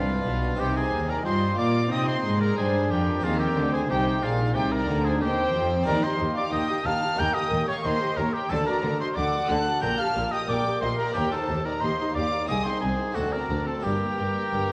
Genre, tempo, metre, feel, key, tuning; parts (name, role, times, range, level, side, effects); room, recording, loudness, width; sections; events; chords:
classical, baroque-style concerto movement with solo episodes; 91 BPM; 4/4; straight; C minor, G minor from 5.9 s; A4 = 441 Hz
clear oboe; melody; 0.0-14.7 s; F4 to G5; -32 LUFS; equal
warm studio violin section; melody; 0.0-14.7 s; F5 to G6; -35 LUFS; equal
warm chamber violin section; second line; 0.0-14.7 s; Ab4 to Bb5; -34 LUFS; equal
dark chamber viola section; accompaniment; 0.0-14.7 s; G3 to Bb4; -34 LUFS; equal
harpsichord; accompaniment; 0.0-14.7 s; C2 to Bb4; -37 LUFS; equal
rich chamber cello section; bass; 0.0-14.6 s; C2 to C4; -33 LUFS; equal
rich chamber double bass section; bass; 0.0-14.6 s; G1 to C3; -32 LUFS; equal
wet recital hall reverb, RT60 1.7 s; worn, warbling old tape, cassette tape, warbly pitch drift; -25 LUFS; mono
0.0-14.7 A section
0.0 G7; 0.6 Cm; 5.9 Cm/Eb; 7.2 Eb7; 8.5 D; 9.8 Gm/Bb; 11.2 Eb; 12.5 Ab/C; 13.2 D5; 13.8 Gm